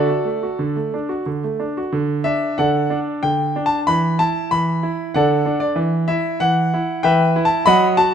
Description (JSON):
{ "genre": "classical-period piano sonatina", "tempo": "93 BPM", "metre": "3/4", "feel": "rubato", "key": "D major", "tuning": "A4 = 439 Hz", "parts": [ { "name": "clear concert grand piano", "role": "solo", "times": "0.0-8.1 s", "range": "D3 to B5", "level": "-16 LUFS", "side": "equal", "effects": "none" } ], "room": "moderate recital hall reverb, RT60 1.3 s", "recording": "close, detailed microphones", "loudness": "-16 LUFS", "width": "side -8 dB against mid", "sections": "0.0-1.9 A section; 1.9-8.1 B section", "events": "none", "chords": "0.0 D; 3.9 N.C.; 5.1 D; 5.8 E5" }